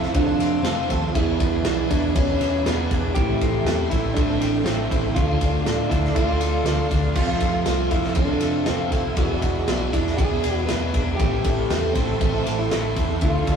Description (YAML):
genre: rock, shoegaze and dream pop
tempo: 120 BPM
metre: 4/4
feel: straight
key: unclear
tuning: A4 = 440 Hz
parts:
  - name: electric guitar at the edge of break-up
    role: melody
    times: 0.0-13.6 s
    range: B3 to B4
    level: -26 LUFS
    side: right 1 dB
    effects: tape echo
  - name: string machine, violins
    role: sustained chords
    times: 0.0-13.6 s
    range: G#4 to E6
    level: -31 LUFS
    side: right 2 dB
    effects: ensemble chorus
  - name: twangy electric guitar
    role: arpeggios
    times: 0.0-13.6 s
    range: E3 to A4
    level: -36 LUFS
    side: left 4 dB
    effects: none
  - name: overdriven electric guitar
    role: riff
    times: 0.0-13.6 s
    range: E2 to F4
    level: -31 LUFS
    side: left 4 dB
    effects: none
  - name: overdriven electric guitar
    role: riff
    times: 0.0-13.6 s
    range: E2 to D4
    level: -31 LUFS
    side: right 2 dB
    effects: spring reverb
  - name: overdriven semi-hollow guitar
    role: riff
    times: 0.0-13.6 s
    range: A2 to A4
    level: -30 LUFS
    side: right 4 dB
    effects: none
  - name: vintage muted picked electric bass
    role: bass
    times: 0.0-13.6 s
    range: E1 to A2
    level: -26 LUFS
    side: equal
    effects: none
  - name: loose indie drum kit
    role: drums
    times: 0.0-13.6 s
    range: crash cymbal, kick drum, ride cymbal, snare drum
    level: -24 LUFS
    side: equal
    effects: none
room: moderate studio reverb, RT60 0.5 s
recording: rough rehearsal-room recording, tube saturation, small room reverb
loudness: -19 LUFS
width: side -7 dB against mid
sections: 0.0-13.6 A section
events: none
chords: 0.0 Fmaj7; 1.2 E7; 3.2 Am7; 5.2 Dm7; 7.2 Fmaj7; 9.2 E7; 11.2 Am7